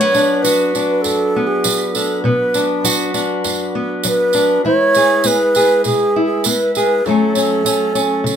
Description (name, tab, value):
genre	acoustic folk duo or small band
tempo	100 BPM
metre	4/4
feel	straight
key	B dorian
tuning	A4 = 436 Hz
part	wooden-headed alto flute	melody	0.0-8.4 s	G#4 to C#5	-15 LUFS	right 1 dB	none
part	fingerpicked steel-string acoustic guitar	accompaniment	0.0-8.4 s	F#2 to G#4	-18 LUFS	left 2 dB	none
part	mellow tonewheel organ	sustained chords	0.0-8.4 s	F#3 to B4	-25 LUFS	right 2 dB	slow rotary speaker
part	tambourine	percussion	0.1-8.4 s	none	-21 LUFS	right 6 dB	none
room	moderate small room reverb, RT60 0.6 s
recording	none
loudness	-13 LUFS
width	side -8 dB against mid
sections	0.0-8.4 A section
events	none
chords	0.0 Bm; 4.6 E; 7.0 F#m